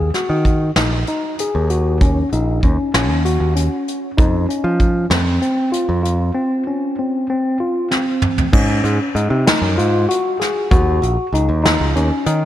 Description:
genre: progressive instrumental, band music in an uneven meter.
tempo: 193 BPM (eighths).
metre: 7/8.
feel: straight.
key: Eb dorian.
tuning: A4 = 440 Hz.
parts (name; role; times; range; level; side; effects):
tine electric piano; arpeggios; 0.0-12.4 s; C4 to Ab4; -19 LUFS; left 1 dB; slapback echo.
modern bright picked electric bass; bass; 0.0-12.4 s; Bb1 to F3; -17 LUFS; equal; none.
soft brush drum kit; drums; 0.1-12.4 s; crash cymbal, hi-hat, kick drum, snare drum, toms; -18 LUFS; equal; none.
room: moderate lush hall reverb, RT60 2.4 s.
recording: big arena sound.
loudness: -15 LUFS.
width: side -12 dB against mid.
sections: 0.0-8.5 A section; 8.5-12.4 B section.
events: drum fill 7.9-8.5.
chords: 0.0 Ebm7; 4.2 Dbmaj7/F; 8.5 Ab7sus4; 10.7 Ebm7.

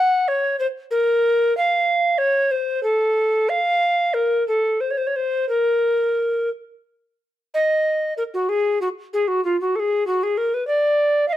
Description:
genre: classical, baroque-style fantasia for unaccompanied recorder.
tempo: 56-66 BPM (dotted quarters).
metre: 6/8.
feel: rubato.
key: Bb minor, Eb minor from 7.5 s.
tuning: A4 = 440 Hz.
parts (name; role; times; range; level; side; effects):
tenor recorder; solo; 0.0-11.4 s; F4 to Gb5; -18 LUFS; equal; none.
room: light reverb.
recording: none.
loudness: -18 LUFS.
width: side -13 dB against mid.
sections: 0.0-7.5 A section; 7.5-11.4 A section.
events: none.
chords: none.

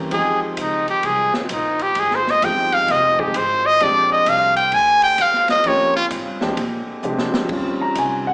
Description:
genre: jazz, big band swing.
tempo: 130 BPM.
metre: 4/4.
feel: swing 66% on 8ths.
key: Eb major.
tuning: A4 = 440 Hz.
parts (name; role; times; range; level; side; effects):
warm grand piano; accompaniment; 0.0-8.3 s; E3 to Bb5; -23 LUFS; equal; none.
mellow trombone section; sustained chords; 0.0-8.3 s; Db3 to C5; -31 LUFS; equal; none.
upright bass; bass; 0.0-8.3 s; F1 to C3; -33 LUFS; equal; none.
brilliant trumpet; melody; 0.1-6.1 s; C4 to Ab5; -15 LUFS; equal; slapback echo.
swinging big-band drum kit; drums; 0.1-8.1 s; crash cymbal, hi-hat, kick drum, ride cymbal, snare drum; -28 LUFS; equal; none.
room: moderate club reverb, RT60 0.5 s.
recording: live gig heard through the venue's PA, club reverb, small speaker sound.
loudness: -15 LUFS.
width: side -29 dB against mid.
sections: 0.0-7.5 A section.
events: trumpet solo 0.0-7.5; drum fill 7.0-7.5.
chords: 0.1 Fm7; 3.8 Bb13; 5.7 Eb13; 6.6 Bb13; 7.5 Eb13.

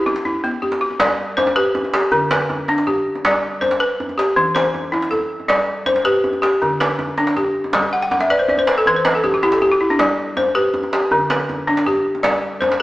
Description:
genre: west african traditional, West African string and xylophone music.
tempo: 107 BPM (dotted quarters).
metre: 12/8.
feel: straight.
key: G major.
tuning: A4 = 439 Hz.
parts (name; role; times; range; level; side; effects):
balafon; arpeggios; 0.0-12.8 s; D3 to G5; -16 LUFS; left 1 dB; none.
djembe; percussion; 0.1-12.8 s; none; -22 LUFS; right 1 dB; none.
room: wet stone room reverb, RT60 1.5 s.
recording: band playing live in one room, small speaker sound.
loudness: -15 LUFS.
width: side -17 dB against mid.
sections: 1.0-10.0 A section; 10.0-12.8 B section.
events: balafon fill 7.9-10.0.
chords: 0.0 Em; 1.0 G; 2.1 G/D; 3.2 G; 4.4 Em; 5.5 G; 6.6 G/D; 7.7 G; 8.9 N.C.; 10.0 G; 11.1 G/D; 12.2 G5.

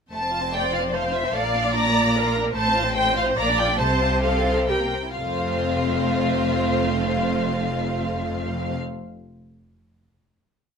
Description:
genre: quick classical-period movement for string orchestra.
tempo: 124-151 BPM.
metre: 3/4.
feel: rubato.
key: F major.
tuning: A4 = 439 Hz.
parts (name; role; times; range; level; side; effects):
rich studio violin section; melody; 0.1-8.7 s; E5 to Bb5; -26 LUFS; equal; none.
rich studio violin section; second line; 0.1-8.7 s; G3 to D5; -26 LUFS; left 1 dB; none.
rich studio cello section; bass; 0.1-8.7 s; F2 to C3; -29 LUFS; right 2 dB; none.
rich studio double bass section; bass; 0.1-8.7 s; F1 to C2; -28 LUFS; equal; none.
rich studio viola section; accompaniment; 0.5-8.7 s; A3 to D5; -26 LUFS; right 1 dB; none.
room: light reverb.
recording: minimal, uncompressed stereo recording.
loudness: -20 LUFS.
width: side -6 dB against mid.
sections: 0.1-5.2 theme; 5.2-8.0 final chord.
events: slowing down 2.0-5.2.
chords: 0.1 F; 1.3 Bb; 2.6 F/A; 3.4 Bb; 3.8 F/C; 4.7 C7; 5.2 F.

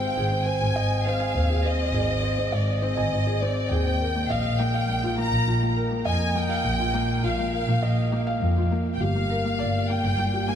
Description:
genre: piano and strings electronica.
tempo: 102 BPM.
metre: 4/4.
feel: straight.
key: unclear.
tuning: A4 = 437 Hz.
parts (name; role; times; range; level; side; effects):
rich studio violin section; melody; 0.0-10.6 s; D5 to Bb5; -28 LUFS; equal; none.
felt-muted upright piano; riff; 0.0-10.6 s; Bb3 to Ab5; -27 LUFS; equal; digital delay.
dark symphonic double bass section; bass; 0.2-10.4 s; G1 to F2; -25 LUFS; equal; none.
room: light reverb.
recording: dark, warm production.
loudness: -22 LUFS.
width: side -9 dB against mid.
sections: 0.0-10.6 A section.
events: none.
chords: 0.0 Ab; 4.0 Bbsus4; 8.7 Gm.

